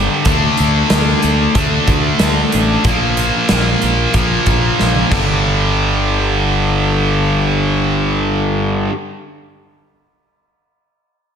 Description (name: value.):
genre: hard rock.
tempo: 92 BPM.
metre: 4/4.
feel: straight.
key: G minor.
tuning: A4 = 442 Hz.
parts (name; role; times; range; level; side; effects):
distorted electric guitar; riff; 0.0-8.9 s; G2 to D4; -18 LUFS; left 8 dB; distortion.
tight distorted guitar; riff; 0.0-8.9 s; G2 to D4; -18 LUFS; right 9 dB; distortion, slapback echo.
fuzz fingered electric bass; bass; 0.0-8.9 s; G1 to D2; -18 LUFS; equal; overdrive.
big rock drum kit; drums; 0.2-5.3 s; crash cymbal, hi-hat, kick drum, snare drum, toms; -18 LUFS; right 1 dB; none.
room: moderate lush hall reverb, RT60 1.6 s, studio ambience.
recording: big arena sound.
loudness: -12 LUFS.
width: side -7 dB against mid.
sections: 0.0-5.4 A section; 5.4-8.0 B section.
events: drum fill 4.8-5.4.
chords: 0.3 D5; 2.8 Bb5; 5.1 G5.